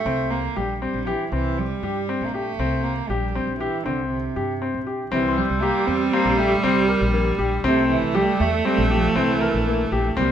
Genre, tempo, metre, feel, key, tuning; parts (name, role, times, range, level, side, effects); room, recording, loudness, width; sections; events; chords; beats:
contemporary instrumental, chamber music in an uneven meter; 119 BPM; 5/4; straight; C mixolydian; A4 = 440 Hz
warm cello; melody; 0.0-10.3 s; C3 to C4; -25 LUFS; right 6 dB
clear baby grand piano; arpeggios; 0.1-10.3 s; Bb3 to Bb4; -24 LUFS; left 4 dB
upright bass; bass; 0.1-10.3 s; Bb1 to G2; -27 LUFS; equal
rich viola; second line; 5.1-10.3 s; G3 to Bb3; -23 LUFS; right 2 dB
glockenspiel with soft plastic mallets; texture; 5.3-6.2 s; C6 to G6; -32 LUFS; left 4 dB
moderate recital hall reverb, RT60 1.5 s; -19 LUFS; side -9 dB against mid
0.0-5.1 A section; 5.1-10.3 B section
0.0 C7(no3); 5.1 C7
| 0.06 0.56 1.07 1.58 2.08 | 2.59 3.10 3.60 4.11 4.62 | 5.12 5.63 6.13 6.64 7.14 | 7.64 8.15 8.65 9.16 9.66 | 10.16